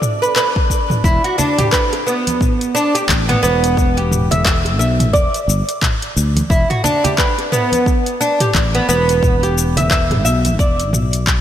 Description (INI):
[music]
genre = organic downtempo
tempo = 88 BPM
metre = 4/4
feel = swing 59% on 16ths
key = E minor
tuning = A4 = 439 Hz
[part]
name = warm analog pad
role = sustained chords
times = 0.0-1.0 s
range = B3 to A4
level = -39 LUFS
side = right 4 dB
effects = none
[part]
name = deep house drum kit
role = drums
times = 0.0-11.4 s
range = handclaps, hi-hat, shaker, toms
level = -20 LUFS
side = equal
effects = overdrive
[part]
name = drifting glass-harmonics texture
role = texture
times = 0.0-1.1 s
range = D4 to D5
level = -32 LUFS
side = left 1 dB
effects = chorus, built-in reverb
[part]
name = oud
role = arpeggios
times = 0.2-10.8 s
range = B3 to E5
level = -17 LUFS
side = right 1 dB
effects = tape echo, slapback echo
[part]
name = electronic kick drum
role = drums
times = 0.6-11.4 s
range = none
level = -17 LUFS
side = equal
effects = overdrive
[part]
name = congas and bongos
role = percussion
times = 0.9-10.6 s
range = none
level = -25 LUFS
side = right 3 dB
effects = none
[part]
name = sustaining fretless electric bass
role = bass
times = 1.0-11.4 s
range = E1 to D2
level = -17 LUFS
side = equal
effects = lush chorus, sidechain pumping
[sound]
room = moderate lush hall reverb, RT60 2.8 s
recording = big arena sound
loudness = -13 LUFS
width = side -10 dB against mid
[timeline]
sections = 0.0-1.0 A section; 1.0-11.4 B section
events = none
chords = 0.0 Bm; 1.0 E7(no3)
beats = 0.36 | 1.04 1.73 2.41 3.09 | 3.77 4.45 5.13 5.82 | 6.50 7.18 7.86 8.54 | 9.23 9.91 10.59 11.27